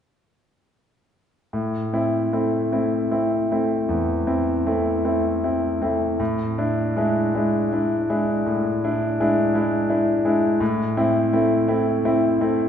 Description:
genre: classical, romantic nocturne for solo piano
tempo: 50-58 BPM (dotted quarters)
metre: 12/8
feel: rubato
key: A minor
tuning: A4 = 440 Hz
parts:
  - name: clear concert grand piano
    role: solo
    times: 1.5-12.7 s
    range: E2 to E4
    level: -19 LUFS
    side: equal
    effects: none
room: wet church reverb, RT60 3.2 s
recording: recorded in a church or concert hall, nothing above 11.0 kHz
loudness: -19 LUFS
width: side -8 dB against mid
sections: 1.5-12.7 A section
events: none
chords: 1.5 Am; 6.2 E7/A; 10.6 Am

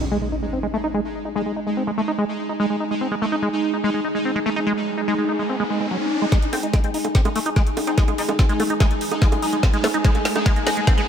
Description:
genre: psychedelic trance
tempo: 145 BPM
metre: 4/4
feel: straight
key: unclear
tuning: A4 = 440 Hz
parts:
  - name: pulsing gated texture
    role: sustained chords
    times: 0.0-11.1 s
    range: G#3 to D#4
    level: -26 LUFS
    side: right 1 dB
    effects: chorus, built-in reverb, sidechain pumping
  - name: liquid acid bass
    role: riff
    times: 0.0-11.0 s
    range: F#3 to D#4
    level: -25 LUFS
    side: equal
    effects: chorus, auto-pan, sidechain pumping, ping-pong delay
  - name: impact and riser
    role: sound effects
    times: 0.0-11.1 s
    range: none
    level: -31 LUFS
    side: equal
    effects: none
  - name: warbly tape-like pad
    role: texture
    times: 0.4-11.1 s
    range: D#4 to G#5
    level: -29 LUFS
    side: left 1 dB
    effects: chorus, built-in reverb, sidechain pumping
  - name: electronic kick drum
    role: drums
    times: 6.3-11.0 s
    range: none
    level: -18 LUFS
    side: equal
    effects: overdrive
  - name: garage drum kit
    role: drums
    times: 6.3-11.1 s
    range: bongos, hi-hat, snare drum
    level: -26 LUFS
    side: right 2 dB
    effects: overdrive
  - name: resonant blip pluck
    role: second line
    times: 6.5-8.5 s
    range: G#3 to B#3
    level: -33 LUFS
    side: left 2 dB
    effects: phaser, sidechain pumping, high-pass filter, ping-pong delay
room: light reverb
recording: none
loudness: -19 LUFS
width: side -8 dB against mid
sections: 0.0-6.3 A section; 6.3-11.1 B section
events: impact 0.0-1.4; filter sweep on acid bass 0.0-6.3, 6.3-11.1; riser 4.2-6.3, 6.3-11.1; build-up 6.3-11.1; drum fill 6.3-11.1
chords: 0.0 G#5

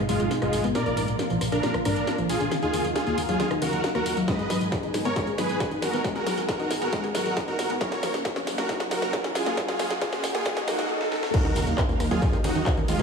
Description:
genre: uplifting trance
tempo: 136 BPM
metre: 4/4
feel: straight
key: Eb minor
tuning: A4 = 440 Hz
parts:
  - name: analog string pad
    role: sustained chords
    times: 0.0-13.0 s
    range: Cb3 to F5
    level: -33 LUFS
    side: right 1 dB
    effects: ensemble chorus, sidechain pumping
  - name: wide unison pluck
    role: arpeggios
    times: 0.0-13.0 s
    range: Ab2 to Ab4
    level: -32 LUFS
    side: left 3 dB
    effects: sidechain pumping, digital delay
  - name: fat analog bass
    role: bass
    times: 0.0-13.0 s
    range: Gb1 to Gb2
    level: -32 LUFS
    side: equal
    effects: sidechain pumping
  - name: big supersaw lead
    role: melody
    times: 0.1-13.0 s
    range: Ab3 to Eb5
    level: -28 LUFS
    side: right 1 dB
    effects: sidechain pumping, low-pass filter, digital delay
  - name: techno drum kit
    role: drums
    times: 0.1-13.0 s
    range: crash cymbal, handclaps, hi-hat, ride cymbal, rim click, snare drum, tambourine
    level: -31 LUFS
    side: equal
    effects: high-pass filter on snare, high-pass filter on hats, high-pass filter on perc, high-pass filter on cymbals
  - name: electronic kick drum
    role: drums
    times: 4.3-12.8 s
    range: none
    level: -28 LUFS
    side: equal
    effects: distortion
  - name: riser, swell and impact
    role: sound effects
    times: 6.7-13.0 s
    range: none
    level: -35 LUFS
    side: equal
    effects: none
room: moderate lush hall reverb, RT60 2.0 s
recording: high-pass filter, small room ambience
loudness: -23 LUFS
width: side -5 dB against mid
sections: 0.0-11.3 A section; 11.3-13.0 B section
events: build-up 0.0-11.3; drum fill 0.0-10.9, 11.0-11.3; filter sweep on synth pluck 0.0-11.3; swell 10.5-11.3; drop 11.3-13.0; impact 11.3-13.0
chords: 0.0 Abm; 0.8 Bb; 2.5 Ebmadd9; 4.3 Abm; 7.8 Gb; 11.3 Ebmadd9

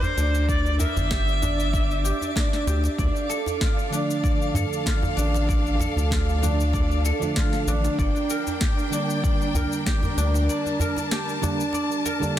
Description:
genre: organic downtempo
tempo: 96 BPM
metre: 4/4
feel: swing 54% on 16ths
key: unclear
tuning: A4 = 440 Hz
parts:
  - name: clear kamancheh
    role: melody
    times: 0.0-2.6 s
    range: C5 to E5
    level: -30 LUFS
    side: left 1 dB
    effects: ping-pong delay
  - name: guzheng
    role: arpeggios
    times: 0.0-12.4 s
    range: D4 to D5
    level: -28 LUFS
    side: right 1 dB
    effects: tape echo
  - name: electronic cabasa and snare drum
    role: drums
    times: 0.0-12.3 s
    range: none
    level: -32 LUFS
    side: left 2 dB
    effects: studio reverb
  - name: djembe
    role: percussion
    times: 0.0-12.3 s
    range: none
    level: -31 LUFS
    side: equal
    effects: none
  - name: twinkling granular texture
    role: texture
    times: 0.0-12.4 s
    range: D4 to D5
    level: -36 LUFS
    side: equal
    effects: built-in reverb
  - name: round analog bass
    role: bass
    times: 0.2-10.5 s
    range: G1 to G2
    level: -23 LUFS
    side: equal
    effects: none
  - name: electronic kick drum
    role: drums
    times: 0.5-10.0 s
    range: none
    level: -24 LUFS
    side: equal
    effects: studio reverb
  - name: warm symphonic string section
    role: sustained chords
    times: 3.0-12.4 s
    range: D4 to A5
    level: -31 LUFS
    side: left 1 dB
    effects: sidechain pumping
  - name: bell-like tine electric piano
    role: accompaniment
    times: 3.9-12.4 s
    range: D3 to D4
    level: -31 LUFS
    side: right 2 dB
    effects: phaser, sidechain pumping, tape echo
room: light reverb, studio reverb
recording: dense, heavily limited modern master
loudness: -21 LUFS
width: side -12 dB against mid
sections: 0.0-12.4 A section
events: none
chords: 0.0 Gm; 3.0 Dm; 8.0 Gm

